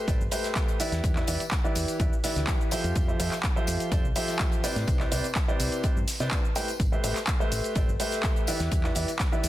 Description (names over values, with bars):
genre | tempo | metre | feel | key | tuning
piano house | 125 BPM | 4/4 | straight | unclear | A4 = 436 Hz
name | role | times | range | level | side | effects
clear upright piano | riff | 0.0-9.5 s | C3 to G5 | -30 LUFS | equal | sidechain pumping, digital delay
solid FM bass | bass | 0.1-9.5 s | G1 to C3 | -30 LUFS | equal | sidechain pumping
electronic kick drum | drums | 0.1-9.3 s | none | -27 LUFS | equal | none
modern studio drum kit | drums | 0.1-9.5 s | hi-hat, snare drum | -43 LUFS | left 3 dB | none
punchy analog drum machine | drums | 0.1-9.5 s | handclaps, hi-hat, shaker | -32 LUFS | equal | none
tambourine | percussion | 0.1-9.5 s | none | -42 LUFS | left 4 dB | none
room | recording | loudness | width
light reverb, small room ambience | dense, heavily limited modern master | -24 LUFS | side -14 dB against mid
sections
0.0-9.5 A section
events
none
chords
0.0 Cmaj9; 0.8 Em7; 2.7 Fmaj9; 4.9 Cmaj9; 6.8 Am9; 8.5 Em7